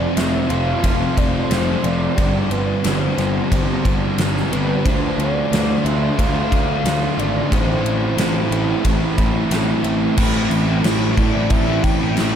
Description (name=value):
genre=rock, shoegaze and dream pop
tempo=90 BPM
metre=4/4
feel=straight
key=unclear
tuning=A4 = 437 Hz
part: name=mellow horn-like synth lead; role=melody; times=0.0-12.4 s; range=B4 to G5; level=-27 LUFS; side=left 1 dB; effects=chorus, phaser, tape echo
part: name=overdriven semi-hollow guitar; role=riff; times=0.0-12.4 s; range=F2 to G4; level=-22 LUFS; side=right 7 dB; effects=reverse reverb
part: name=thick fuzz guitar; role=riff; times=0.0-12.4 s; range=F2 to D4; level=-22 LUFS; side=left 6 dB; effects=distortion, analog chorus
part: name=fuzz picked electric bass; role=bass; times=0.0-12.4 s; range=F1 to D2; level=-23 LUFS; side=equal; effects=overdrive
part: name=gated 80s drum kit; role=drums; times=0.2-12.3 s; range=crash cymbal, kick drum, ride cymbal, snare drum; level=-22 LUFS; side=equal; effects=none
room=wet huge ambient reverb, RT60 7.9 s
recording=dreamy mix soaked in reverb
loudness=-16 LUFS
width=side -8 dB against mid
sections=0.0-10.2 A section; 10.2-12.4 B section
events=none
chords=0.0 F; 2.2 Gsus4; 4.9 Dm; 7.5 Am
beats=0.17 0.84 1.51 | 2.18 2.85 3.52 4.18 | 4.85 5.52 6.19 6.85 | 7.52 8.18 8.85 9.51 | 10.18 10.84 11.50 12.17